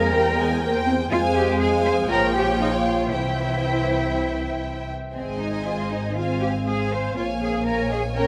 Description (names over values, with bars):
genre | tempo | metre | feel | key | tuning
quick classical-period movement for string orchestra | 119 BPM | 4/4 | straight | F minor | A4 = 438 Hz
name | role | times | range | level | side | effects
warm symphonic violin section | melody | 0.0-8.3 s | G5 to Ab5 | -32 LUFS | equal | none
dark symphonic violin section | second line | 0.0-8.3 s | C5 to Ab5 | -30 LUFS | equal | none
dark symphonic viola section | accompaniment | 0.0-8.3 s | E3 to Db4 | -30 LUFS | equal | none
rich symphonic cello section | bass | 0.0-8.3 s | C4 to C5 | -28 LUFS | equal | none
warm chamber double bass section | bass | 0.0-8.3 s | Ab1 to F2 | -29 LUFS | equal | none
room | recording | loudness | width
wet cathedral reverb, RT60 5.5 s | in a vast, echoing space | -23 LUFS | mono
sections
0.0-8.3 A section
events
none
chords
0.1 C7/E; 1.1 Fm; 2.1 Gdim/Bb; 3.1 C; 5.1 Ab; 6.2 Fm/Ab; 7.2 Bbm7